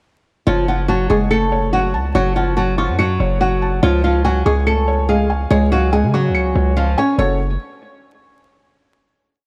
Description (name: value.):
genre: hip hop, trap.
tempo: 143 BPM.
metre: 4/4.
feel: half-time.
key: F# harmonic minor.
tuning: A4 = 440 Hz.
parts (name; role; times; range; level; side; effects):
flamenco guitar; melody; 0.5-7.4 s; E#3 to C#5; -20 LUFS; equal; none.
felt-muted upright piano; accompaniment; 0.5-7.4 s; C#4 to C#7; -25 LUFS; equal; none.
hard-hitting 808-style bass; bass; 0.5-7.6 s; F#1 to C#3; -20 LUFS; equal; none.
room: small room ambience.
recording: dry, gritty hardware recording, vinyl crackle.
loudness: -17 LUFS.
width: mono.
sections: 0.5-7.2 hook; 7.2-8.9 final chord.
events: none.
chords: 0.5 F#m; 3.8 C#; 7.2 F#m.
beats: | 0.47 0.89 1.31 1.73 | 2.15 2.57 2.99 3.41 | 3.83 4.25 4.67 5.09 | 5.51 5.93 6.35 6.76 | 7.18.